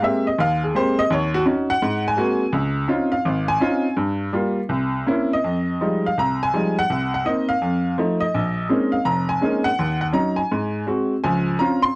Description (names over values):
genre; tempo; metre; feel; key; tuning
solo jazz; 166 BPM; 4/4; swing 66% on 8ths, rubato; F minor; A4 = 444 Hz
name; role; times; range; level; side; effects
bright upright piano; solo; 0.0-12.0 s; F1 to C6; -18 LUFS; equal; none
room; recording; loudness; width
light reverb; dry, close 1970s-style studio recording; -18 LUFS; side -25 dB against mid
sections
0.0-5.5 A section; 5.5-12.0 B section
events
upright piano solo 0.0-5.5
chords
0.0 Abmaj9; 1.1 Ebm7; 1.8 Ab9; 2.5 Dbmaj9; 4.0 Gm7; 4.7 C7b9; 5.5 Fm9; 6.9 Cm7b5; 7.6 F7; 8.3 Bbm11; 9.8 Ebm7; 10.5 Ab7; 11.2 Dbmaj7